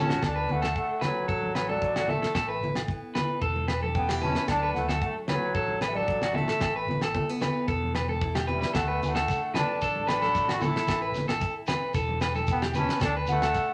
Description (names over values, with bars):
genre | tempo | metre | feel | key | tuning
highlife guitar band | 113 BPM | 4/4 | straight | D major | A4 = 440 Hz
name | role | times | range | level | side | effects
hollow wooden flute | melody | 0.0-13.7 s | C#5 to C#6 | -33 LUFS | equal | none
mellow trumpet | second line | 0.0-13.7 s | F#3 to E4 | -37 LUFS | equal | none
picked steel-string acoustic guitar | accompaniment | 0.0-13.7 s | A2 to G4 | -42 LUFS | equal | none
electric guitar at the edge of break-up | arpeggios | 0.0-13.7 s | F#4 to B4 | -32 LUFS | equal | none
fingered electric bass | bass | 0.0-13.5 s | E1 to D2 | -36 LUFS | equal | none
damped 70s drum kit | drums | 0.1-13.7 s | kick drum, snare drum | -34 LUFS | equal | none
congas | percussion | 0.1-13.4 s | none | -37 LUFS | equal | none
shekere | percussion | 0.1-0.2, 8.8-13.7 s | none | -42 LUFS | equal | none
agogo bells | percussion | 0.2-13.5 s | none | -41 LUFS | equal | none
room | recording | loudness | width
wet studio reverb, RT60 0.6 s | none | -27 LUFS | mono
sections
0.2-13.7 A section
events
none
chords
0.2 D; 2.4 Asus2; 3.4 Em; 4.5 D; 6.6 Asus2; 7.7 Em; 8.8 D; 10.9 Asus2; 11.9 Em; 13.0 D